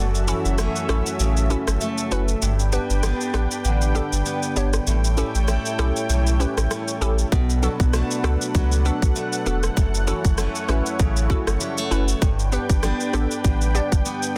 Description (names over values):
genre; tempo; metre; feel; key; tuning
dancehall; 98 BPM; 4/4; swing 56% on 16ths; unclear; A4 = 441 Hz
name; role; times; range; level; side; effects
lush unison pad; sustained chords; 0.0-14.4 s; C#4 to G5; -32 LUFS; equal; chorus, sidechain pumping
picked steel-string acoustic guitar; arpeggios; 0.0-14.4 s; F#2 to E4; -31 LUFS; equal; none
warm sub bass; bass; 0.0-14.0 s; E1 to C#2; -24 LUFS; equal; none
island pop drum kit; drums; 0.1-14.4 s; kick drum, rim click, shaker; -27 LUFS; equal; overdrive
glassy wavetable pluck; accompaniment; 0.3-13.9 s; B3 to D5; -31 LUFS; equal; chorus
room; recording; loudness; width
digital ambience; dense, heavily limited modern master; -22 LUFS; mono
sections
0.0-14.4 A section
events
break 0.0-7.3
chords
0.0 F#m7; 2.4 G; 4.9 A7; 7.3 Bm7; 9.8 F#m7; 12.2 G